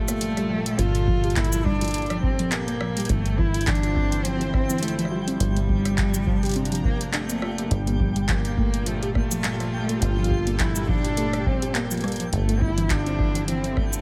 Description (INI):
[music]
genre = IDM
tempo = 104 BPM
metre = 4/4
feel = swing 56% on 16ths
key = G dorian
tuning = A4 = 443 Hz
[part]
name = dark cello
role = melody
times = 0.0-14.0 s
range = G3 to F4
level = -30 LUFS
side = equal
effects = tape echo
[part]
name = warm analog pad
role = sustained chords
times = 0.0-14.0 s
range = Bb2 to Bb5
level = -34 LUFS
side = equal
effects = chorus
[part]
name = warbly dusty pluck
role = arpeggios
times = 0.0-13.9 s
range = E3 to G4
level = -32 LUFS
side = equal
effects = chorus, tape echo
[part]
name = deep acid bass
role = bass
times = 0.0-14.0 s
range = G1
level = -30 LUFS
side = equal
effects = none
[part]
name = twinkling granular texture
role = texture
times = 0.0-14.0 s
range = G4 to G5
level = -43 LUFS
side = equal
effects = built-in reverb
[part]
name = booming analog drum machine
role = drums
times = 0.1-14.0 s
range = cabasa, handclaps, hi-hat, rim click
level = -33 LUFS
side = equal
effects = none
[part]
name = electronic kick drum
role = drums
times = 1.1-13.9 s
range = none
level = -28 LUFS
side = equal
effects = none
[sound]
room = light reverb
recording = none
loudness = -24 LUFS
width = mono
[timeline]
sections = 0.0-14.0 A section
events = none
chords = 0.0 Gm9; 3.1 Dm9/G; 5.4 C9sus4/G; 7.7 Gm9; 12.3 Dm9/G